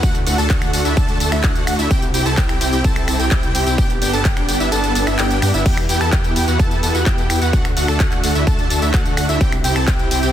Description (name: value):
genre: EDM, festival progressive house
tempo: 128 BPM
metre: 4/4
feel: straight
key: E minor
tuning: A4 = 436 Hz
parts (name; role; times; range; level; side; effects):
- lush unison pad; sustained chords; 0.0-10.3 s; C3 to B4; -26 LUFS; equal; chorus, vintage 12-bit sampler grit, sidechain pumping
- wide unison lead; arpeggios; 0.0-10.3 s; E5 to A5; -24 LUFS; equal; sidechain pumping, dub echo
- supersaw chords; riff; 0.0-10.3 s; A3 to A4; -21 LUFS; right 1 dB; sidechain pumping, dub echo
- wide detuned saw bass; bass; 0.0-10.3 s; G1 to G2; -21 LUFS; equal; chorus, sidechain pumping
- big-room dance drum kit; drums; 0.0-10.3 s; crash cymbal, finger snaps, handclaps, hi-hat, tambourine; -24 LUFS; left 1 dB; overdrive
- electronic kick drum; drums; 0.0-10.0 s; none; -18 LUFS; equal; overdrive
room: digital ambience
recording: dense, heavily limited modern master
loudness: -14 LUFS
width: side -11 dB against mid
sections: 0.0-5.7 A section; 5.7-10.3 A section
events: drop 0.0-5.7, 5.7-10.3; kick drops out 4.7-5.7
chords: 0.0 D; 1.9 C; 3.8 G; 5.7 Em; 7.5 D; 9.4 C